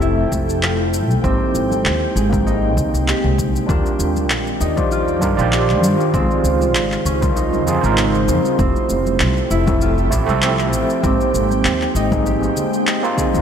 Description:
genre	sunset chillout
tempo	98 BPM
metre	4/4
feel	swing 55% on 16ths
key	Eb major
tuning	A4 = 440 Hz
part	overdriven tine electric piano	accompaniment	0.0-13.4 s	Ab3 to E5	-22 LUFS	moving between left 4 dB and right 6 dB	fast tremolo, auto-pan, tape echo
part	ethereal airy pad	sustained chords	0.0-13.4 s	Db3 to G5	-23 LUFS	equal	ensemble chorus, built-in reverb
part	concert harp	arpeggios	0.0-13.4 s	C4 to Ab4	-23 LUFS	right 1 dB	tape echo
part	upright bass	bass	0.0-13.4 s	F1 to G2	-20 LUFS	equal	none
part	electronic shaker and handclaps	drums	0.0-13.4 s	none	-24 LUFS	left 1 dB	none
part	electronic kick drum	drums	0.3-13.3 s	none	-22 LUFS	equal	overdrive
part	congas	percussion	1.7-13.4 s	none	-29 LUFS	left 2 dB	none
room	light reverb, small room ambience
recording	none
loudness	-15 LUFS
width	side -8 dB against mid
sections	0.0-3.7 A section; 3.7-13.4 B section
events	filter sweep on tine electric piano 0.0-3.7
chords	0.0 Fmaj9; 1.2 Abmaj9; 3.7 Ebmaj9; 6.1 Dbmaj9; 8.6 Fmaj9; 11.0 Abmaj9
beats	0.02 0.63 | 1.24 1.85 2.46 3.08 | 3.69 4.30 4.91 5.53 | 6.14 6.75 7.36 7.97 | 8.59 9.20 9.81 10.42 | 11.04 11.65 12.26 12.87

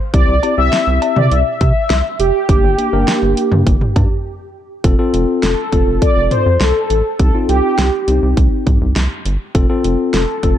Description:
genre	synth-pop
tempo	102 BPM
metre	4/4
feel	straight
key	unclear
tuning	A4 = 440 Hz
part	mellow synth brass	melody	0.1-10.6 s	G4 to E5	-17 LUFS	equal	chorus
part	tine electric piano	accompaniment	0.1-10.6 s	Bb3 to Bb4	-19 LUFS	left 4 dB	none
part	rubbery square bass	bass	0.1-10.6 s	F1 to C3	-16 LUFS	equal	none
part	pop drum kit	drums	0.1-10.6 s	cowbell, hi-hat, kick drum, snare drum, toms	-16 LUFS	equal	none
room	light reverb, digital ambience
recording	dark, warm production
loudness	-12 LUFS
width	side -11 dB against mid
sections	0.0-4.8 A section; 4.8-10.6 B section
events	break 4.3-4.8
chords	0.1 C; 2.5 Gm; 4.8 F; 7.2 Cm; 9.5 F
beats	| 0.14 0.72 1.31 1.90 | 2.49 3.08 3.67 4.25 | 4.84 5.43 6.02 6.61 | 7.20 7.78 8.37 8.96 | 9.55 10.14

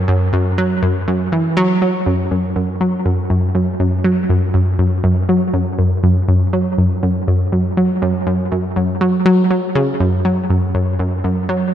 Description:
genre	ambient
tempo	121 BPM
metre	4/4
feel	straight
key	unclear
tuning	A4 = 440 Hz
part	analog pluck	solo	0.1-11.7 s	F#2 to F#3	-14 LUFS	equal	chorus, analog delay
room	moderate plate reverb, RT60 3.2 s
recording	dreamy mix soaked in reverb, nothing above 10.8 kHz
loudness	-14 LUFS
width	side -10 dB against mid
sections	0.0-2.1 A section; 2.1-11.7 B section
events	none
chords	none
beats	| 0.08 0.58 1.07 1.57 | 2.06 2.56 3.06 3.55 | 4.05 4.54 5.04 5.54 | 6.03 6.53 7.02 7.52 | 8.02 8.51 9.01 9.50 | 10.00 10.49 10.99 11.49

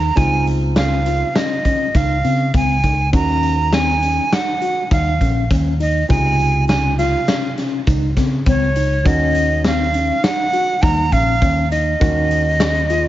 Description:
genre	progressive instrumental, band music in an uneven meter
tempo	101 BPM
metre	5/4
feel	straight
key	Eb dorian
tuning	A4 = 435 Hz
part	breathy bright jazz flute	melody	0.0-13.1 s	Db5 to Bb5	-19 LUFS	right 2 dB	digital delay
part	dark concert grand piano	accompaniment	0.0-13.1 s	C3 to Gb4	-27 LUFS	right 2 dB	none
part	mellow tine electric piano	arpeggios	0.0-13.1 s	C4 to Gb4	-23 LUFS	left 3 dB	medium stereo tremolo
part	fretless electric bass	bass	0.0-13.1 s	Bb1 to Db3	-19 LUFS	equal	none
part	raw garage drum kit	drums	0.2-13.0 s	hi-hat, kick drum, snare drum	-20 LUFS	equal	none
room	light reverb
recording	nothing above 7.6 kHz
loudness	-14 LUFS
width	side -14 dB against mid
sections	0.0-13.1 A section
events	none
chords	0.2 Dbmaj9; 3.1 Ebm7; 6.1 Dbmaj9; 9.1 Ebm9; 12.0 Ebm7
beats	| 0.17 0.76 1.35 1.95 2.54 | 3.13 3.73 4.32 4.91 5.50 | 6.10 6.69 7.28 7.87 8.46 | 9.06 9.65 10.24 10.83 11.42 | 12.01 12.60

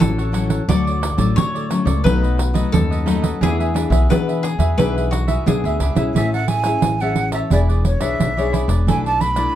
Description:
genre	samba and choro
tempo	88 BPM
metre	4/4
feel	straight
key	A major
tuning	A4 = 440 Hz
part	bowl-back mandolin	second line	0.0-6.1 s	F#4 to D5	-26 LUFS	left 3 dB	none
part	cavaquinho	accompaniment	0.0-9.6 s	D4 to A5	-27 LUFS	right 3 dB	none
part	nylon-string guitar	accompaniment	0.0-9.6 s	F#2 to C#5	-23 LUFS	left 4 dB	none
part	upright bass	bass	0.0-9.5 s	E1 to E3	-20 LUFS	equal	none
part	pandeiro	percussion	0.0-9.5 s	none	-21 LUFS	right 4 dB	none
part	breathy jazz flute	melody	6.1-9.6 s	C#5 to B5	-21 LUFS	right 2 dB	none
room	moderate studio reverb, RT60 0.6 s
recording	dark, warm production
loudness	-16 LUFS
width	side -11 dB against mid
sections	0.0-6.1 A section; 6.1-9.6 B section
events	none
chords	0.0 A6; 0.7 Dmaj7; 2.0 B7; 3.4 E7; 6.1 Amaj7; 7.5 E6; 8.9 Bm7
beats	0.00 | 0.68 1.37 2.05 2.73 | 3.41 4.10 4.78 5.46 | 6.14 6.83 7.51 8.20 | 8.88

